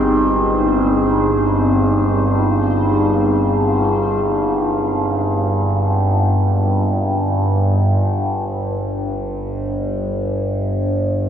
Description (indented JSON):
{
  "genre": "dark ambient drone",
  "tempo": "free time",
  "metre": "none",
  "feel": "none",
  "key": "unclear",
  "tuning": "A4 = 437 Hz",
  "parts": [
    { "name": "deep dark ambient pad", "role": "sustained chords", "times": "0.0-8.5 s", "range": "C4 to F5", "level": "-20 LUFS", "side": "equal", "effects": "chorus, built-in reverb" },
    { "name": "overtone-sweeping drone", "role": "drone", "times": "0.0-11.3 s", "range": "G1 to G2", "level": "-17 LUFS", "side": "equal", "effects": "chorus, built-in reverb, phaser" },
    { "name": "bubbling stepped-filter texture", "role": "texture", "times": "0.0-8.5 s", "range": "C4 to C5", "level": "-37 LUFS", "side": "left 1 dB", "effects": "chorus, built-in reverb" }
  ],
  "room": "wet cathedral reverb, RT60 6.5 s",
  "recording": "dark, warm production",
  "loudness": "-15 LUFS",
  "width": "side -9 dB against mid",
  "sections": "0.0-8.5 A section; 8.5-11.3 B section",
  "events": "fade-out on synth texture 0.0-8.5",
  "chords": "0.0 Ab/G; 8.5 N.C.",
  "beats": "free time"
}